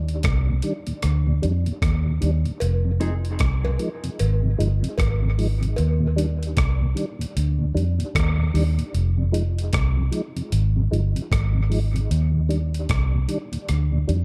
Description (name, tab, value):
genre	dub reggae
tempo	76 BPM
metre	4/4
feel	swing 61% on 16ths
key	unclear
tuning	A4 = 440 Hz
part	vintage muted fingered electric bass	bass	0.0-14.2 s	F1 to F2	-23 LUFS	equal	none
part	breakbeat sampler-style drum kit	drums	0.1-14.2 s	hi-hat, kick drum, rim click	-28 LUFS	equal	none
part	mellow tonewheel organ	accompaniment	0.5-14.2 s	Eb2 to Eb4	-31 LUFS	equal	chorus vibrato, slow rotary speaker, dub echo
part	cowbell	percussion	2.6-6.0 s	none	-36 LUFS	equal	dub echo
part	mellow electric guitar	accompaniment	3.0-3.1 s	C4 to Ab4	-38 LUFS	equal	subtle chorus, dub echo
room	little or no reverb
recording	dark, warm production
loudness	-22 LUFS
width	mono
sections	0.0-14.2 A section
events	break 0.0-2.6; part muted 5.8-14.2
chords	0.0 Ebmaj7; 2.6 Fm7; 5.8 Ebmaj7; 8.9 Fm7; 12.1 Ebmaj7